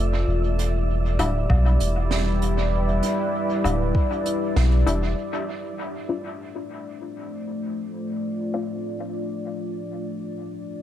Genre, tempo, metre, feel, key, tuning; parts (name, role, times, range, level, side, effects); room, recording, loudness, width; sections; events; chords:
ambient dub; 98 BPM; 4/4; swing 58% on 16ths; D dorian; A4 = 438 Hz
deep dark ambient pad; sustained chords; 0.0-10.8 s; G3 to D5; -27 LUFS; left 1 dB; chorus, built-in reverb, vintage 12-bit sampler grit
soft dub sub bass; bass; 0.0-5.1 s; D1 to B1; -21 LUFS; equal; tube saturation
wind-like tuned noise texture; texture; 0.0-5.2 s; E5; -38 LUFS; right 8 dB; built-in reverb
jazz brush drum kit; drums; 0.6-5.0 s; hi-hat, snare drum, woodblock; -33 LUFS; right 2 dB; dub echo
filtered dub chord stab; stabs; 1.2-8.8 s; G3 to F4; -32 LUFS; left 3 dB; chorus, dub echo
electronic kick drum; drums; 1.5-4.1 s; -22 LUFS; equal
light reverb, small room ambience; echo-heavy mix; -22 LUFS; side -11 dB against mid
0.0-5.2 A section; 5.2-10.8 B section
band accent 4.6-4.9; filter sweep on ambient pad 5.2-10.8
0.3 Em7; 5.2 Dm7; 10.1 Em7